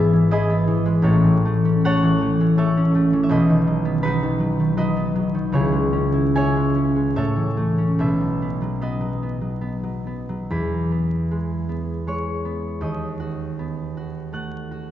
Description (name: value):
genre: classical, solo harp piece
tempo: 65-83 BPM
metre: 3/4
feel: rubato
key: E major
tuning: A4 = 443 Hz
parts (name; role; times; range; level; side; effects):
- concert harp; solo; 0.0-14.9 s; G#1 to F#6; -18 LUFS; equal; none
room: wet church reverb, RT60 3.4 s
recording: heard from further back in the room, vinyl crackle, nothing above 7.6 kHz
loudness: -18 LUFS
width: side -11 dB against mid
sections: 0.0-10.5 A section; 10.5-14.9 B section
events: none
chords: 0.0 E/G#; 1.0 A; 3.3 B; 5.5 C#m; 7.2 A; 8.0 B; 10.5 E; 12.8 B7/D#